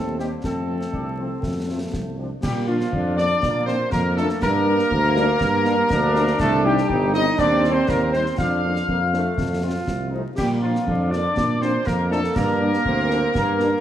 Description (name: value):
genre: military-style march for wind band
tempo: 121 BPM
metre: 2/4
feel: straight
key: Bb major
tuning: A4 = 445 Hz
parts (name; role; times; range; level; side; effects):
- mellow trumpet section; melody; 0.0-13.8 s; F4 to F5; -26 LUFS; equal; none
- clear euphonium; second line; 0.0-13.8 s; F3 to F4; -28 LUFS; right 3 dB; none
- mellow hollow piccolo; second line; 0.0-13.8 s; F5 to F6; -29 LUFS; left 5 dB; none
- mellow woodwind section; second line; 0.0-13.8 s; Bb3 to F5; -29 LUFS; left 1 dB; none
- clear trombone section; sustained chords; 0.0-13.8 s; G3 to F4; -28 LUFS; right 1 dB; none
- warm tuba; bass; 0.0-13.8 s; G1 to Bb2; -24 LUFS; right 2 dB; none
- warm French horn section; accompaniment; 0.2-13.7 s; F3 to Eb4; -30 LUFS; left 4 dB; none
- concert snare drum, concert bass drum and clash cymbals; drums; 0.2-13.7 s; none; -30 LUFS; left 1 dB; none
room: wet recital hall reverb, RT60 1.5 s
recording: dark, warm production, vinyl crackle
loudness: -18 LUFS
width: side -10 dB against mid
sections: 0.0-2.4 A section; 2.4-13.8 B section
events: none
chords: 0.5 F; 2.4 Bb; 4.4 Gm; 6.4 Cm; 7.4 Cm/Eb; 8.4 Bb/F; 9.4 F; 10.4 Bb; 12.4 Gm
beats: | 0.45 0.95 | 1.44 1.94 | 2.44 2.93 | 3.43 3.92 | 4.42 4.92 | 5.41 5.91 | 6.41 6.90 | 7.40 7.89 | 8.39 8.89 | 9.38 9.88 | 10.38 10.87 | 11.37 11.86 | 12.36 12.86 | 13.35